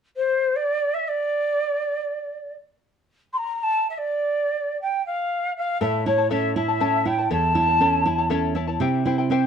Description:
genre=andean folk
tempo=free time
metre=none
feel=none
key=unclear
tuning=A4 = 440 Hz
part: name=mellow quena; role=melody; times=0.2-8.3 s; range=C5 to C6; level=-22 LUFS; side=equal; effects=slapback echo
part: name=charango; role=accompaniment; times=5.8-9.5 s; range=E4 to A5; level=-25 LUFS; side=left 11 dB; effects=none
part: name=nylon-string guitar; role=accompaniment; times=5.8-9.5 s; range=E2 to E4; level=-23 LUFS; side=right 4 dB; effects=none
room=light reverb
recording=dry, close 1970s-style studio recording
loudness=-20 LUFS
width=side -7 dB against mid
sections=0.0-5.8 A section; 5.8-9.5 B section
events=none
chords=0.0 N.C.; 5.8 A; 8.8 C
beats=free time

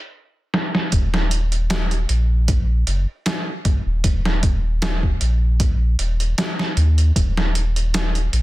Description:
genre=trip hop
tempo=77 BPM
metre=4/4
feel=swing 54% on 16ths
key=Eb minor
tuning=A4 = 439 Hz
part: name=trip hop sampler-style drum kit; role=drums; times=0.5-8.4 s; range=hi-hat, kick drum, snare drum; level=-21 LUFS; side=equal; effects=overdrive, low-pass filter on hats, low-pass filter on snare, low-pass filter on kick, low-pass filter on room
part: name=warm sub bass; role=bass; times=0.9-8.4 s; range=Eb1 to Eb2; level=-18 LUFS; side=equal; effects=none
room=little or no reverb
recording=dense, heavily limited modern master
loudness=-17 LUFS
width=side -17 dB against mid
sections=0.9-8.4 A section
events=drum fill 0.5-0.9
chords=none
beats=0.15 | 0.93 1.71 2.48 3.26 | 4.04 4.82 5.60 6.38 | 7.16 7.94

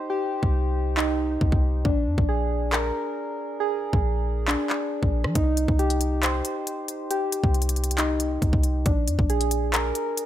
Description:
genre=hip hop, trap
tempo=137 BPM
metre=4/4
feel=half-time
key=C minor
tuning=A4 = 438 Hz
part: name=soft electric-piano-like synth keys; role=arpeggios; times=0.0-10.3 s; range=D4 to C5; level=-26 LUFS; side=equal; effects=chorus, tape echo
part: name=clean 808-style bass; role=bass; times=0.4-9.9 s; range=Bb1 to F3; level=-25 LUFS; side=equal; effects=none
part: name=trap drum kit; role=drums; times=0.4-10.3 s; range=handclaps, hi-hat, kick drum, rim click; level=-25 LUFS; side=equal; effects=none
room=light reverb, digital ambience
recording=none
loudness=-22 LUFS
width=side -12 dB against mid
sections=0.0-10.3 A section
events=break 0.0-5.4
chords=0.0 Cm; 1.9 Bb7; 5.4 Cm; 8.9 Bb7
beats=| 0.10 0.54 0.97 1.41 | 1.85 2.29 2.73 3.17 | 3.60 4.04 4.48 4.92 | 5.36 5.79 6.23 6.67 | 7.11 7.54 7.98 8.42 | 8.86 9.30 9.73 10.17

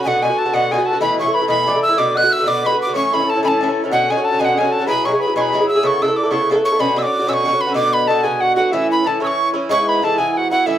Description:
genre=celtic folk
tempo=124 BPM (dotted quarters)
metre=6/8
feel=straight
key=B dorian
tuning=A4 = 440 Hz
part: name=tin whistle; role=melody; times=0.0-10.8 s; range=E5 to F#6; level=-17 LUFS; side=equal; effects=none
part: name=Irish bouzouki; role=accompaniment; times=0.0-10.8 s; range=G#2 to A4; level=-18 LUFS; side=equal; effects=none
part: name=mellow accordion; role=second line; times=0.1-10.8 s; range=E4 to F#5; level=-23 LUFS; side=left 2 dB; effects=none
room=moderate studio reverb, RT60 0.6 s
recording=none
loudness=-14 LUFS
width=side -11 dB against mid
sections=0.1-7.8 A section; 7.8-10.8 B section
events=none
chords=0.1 Bm; 1.0 Asus2; 2.0 Bm; 2.9 A; 3.9 Bmadd9; 4.9 Eadd9; 5.8 Aadd9; 6.8 Bmadd9; 7.8 Bm; 8.7 A; 9.7 E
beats=| 0.06 0.54 | 1.02 1.50 | 1.98 2.46 | 2.94 3.42 | 3.90 4.38 | 4.87 5.35 | 5.83 6.31 | 6.79 7.28 | 7.76 8.24 | 8.73 9.21 | 9.69 10.18 | 10.66

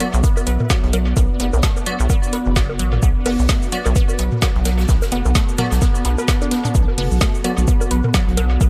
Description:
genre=minimal techno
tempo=129 BPM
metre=4/4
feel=swing 58% on 16ths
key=B minor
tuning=A4 = 436 Hz
part: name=resonant blip pluck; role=riff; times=0.0-8.7 s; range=F#3 to B4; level=-29 LUFS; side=equal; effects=phaser, sidechain pumping, analog delay
part: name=wavetable chord stab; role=stabs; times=0.0-7.5 s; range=B3 to D5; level=-32 LUFS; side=equal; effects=dub echo
part: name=garage drum kit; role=drums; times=0.0-8.7 s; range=hi-hat, shaker, snare drum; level=-27 LUFS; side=equal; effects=overdrive, dub echo
part: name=soft-mallet drum kit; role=drums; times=0.0-8.7 s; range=hi-hat, shaker, snare drum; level=-38 LUFS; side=equal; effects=none
part: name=electronic bongos and toms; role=percussion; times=0.0-8.7 s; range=none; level=-28 LUFS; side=equal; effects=dub echo
part: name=granular cloud pad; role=texture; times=0.0-8.7 s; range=B3 to D5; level=-28 LUFS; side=equal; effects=built-in reverb, sidechain pumping
part: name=rubbery square bass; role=bass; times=0.1-8.7 s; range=F#1 to B1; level=-20 LUFS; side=equal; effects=sidechain pumping
part: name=electronic kick drum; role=drums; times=0.2-8.7 s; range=none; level=-20 LUFS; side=equal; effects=none
room=light reverb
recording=echo-heavy mix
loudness=-18 LUFS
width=mono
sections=0.0-8.7 A section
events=none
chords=0.0 Bm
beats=0.24 0.70 | 1.17 1.63 2.10 2.56 | 3.03 3.49 3.96 4.42 | 4.89 5.35 5.82 6.28 | 6.75 7.21 7.68 8.14 | 8.61

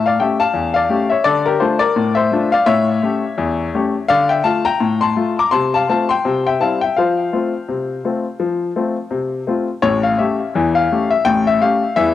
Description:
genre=ragtime piano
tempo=84 BPM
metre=2/4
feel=swing 57% on 16ths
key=unclear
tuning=A4 = 439 Hz
part: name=clear baby grand piano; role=solo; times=0.0-12.1 s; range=A1 to D6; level=-14 LUFS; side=left 4 dB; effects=cassette tape, analog delay
room=light reverb, small room ambience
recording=home recording on cassette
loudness=-14 LUFS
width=side -12 dB against mid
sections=0.0-9.8 A section; 9.8-12.1 B section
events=none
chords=0.0 A7; 1.2 Dm; 2.7 A7; 4.1 Dm; 5.5 F/C; 6.2 C; 7.0 F; 9.8 A7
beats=0.54 | 1.25 1.96 | 2.67 3.38 | 4.09 4.81 | 5.52 6.23 | 6.95 7.67 | 8.39 9.11 | 9.83 10.54 | 11.26 11.97

